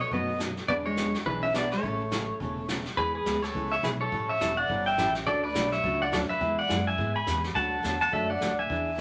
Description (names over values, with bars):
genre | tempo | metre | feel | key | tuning
country, western swing | 210 BPM | 4/4 | swing 59% on 8ths | unclear | A4 = 438 Hz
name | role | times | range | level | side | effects
pedal steel guitar | melody | 0.0-9.0 s | G#4 to B5 | -30 LUFS | equal | none
vintage hollow-body jazz guitar | second line | 0.0-2.7 s | E3 to C#4 | -36 LUFS | equal | none
picked steel-string acoustic guitar | accompaniment | 0.1-9.0 s | B2 to A4 | -37 LUFS | equal | none
upright bass | bass | 0.1-9.0 s | E1 to G#2 | -38 LUFS | equal | none
vintage brush drum kit | drums | 0.1-9.0 s | brushed snare drum, hi-hat, kick drum, snare drum | -39 LUFS | equal | none
room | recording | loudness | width
wet club reverb, RT60 0.8 s | none | -28 LUFS | mono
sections
0.0-3.0 A section; 3.0-9.0 B section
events
none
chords
0.0 B7; 0.7 E7; 1.8 A; 3.0 E; 4.1 A7; 5.3 Dmaj7; 6.4 E; 7.6 D